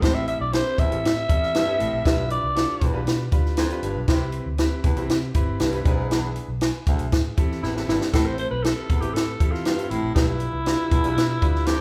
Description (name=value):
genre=uptempo 1960s-style soul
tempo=119 BPM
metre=4/4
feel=straight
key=A minor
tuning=A4 = 440 Hz
part: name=growling alto saxophone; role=melody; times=0.0-3.0, 7.6-11.8 s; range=E4 to E5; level=-28 LUFS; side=equal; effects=none
part: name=vibraphone with soft mallets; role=second line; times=0.0-3.0 s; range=C4 to E4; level=-38 LUFS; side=equal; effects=none
part: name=clear concert grand piano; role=accompaniment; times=0.0-11.8 s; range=F3 to G#5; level=-34 LUFS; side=equal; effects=none
part: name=clear baritone saxophone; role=riff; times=0.0-11.8 s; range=D2 to C3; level=-33 LUFS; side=equal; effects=none
part: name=vintage muted fingered electric bass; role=bass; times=0.0-11.7 s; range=G1 to C3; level=-31 LUFS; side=equal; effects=none
part: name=compact cocktail drum kit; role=drums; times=0.0-11.8 s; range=hi-hat, kick drum, snare drum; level=-24 LUFS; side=equal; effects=none
room=wet large studio reverb, RT60 0.8 s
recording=band playing live in one room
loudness=-23 LUFS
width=mono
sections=0.0-8.1 A section; 8.1-11.8 A section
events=drum fill 7.6-8.1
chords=0.0 Am7; 2.1 G7/B; 4.1 Cmaj7; 5.9 E7/B; 7.1 Am7; 10.2 G7/B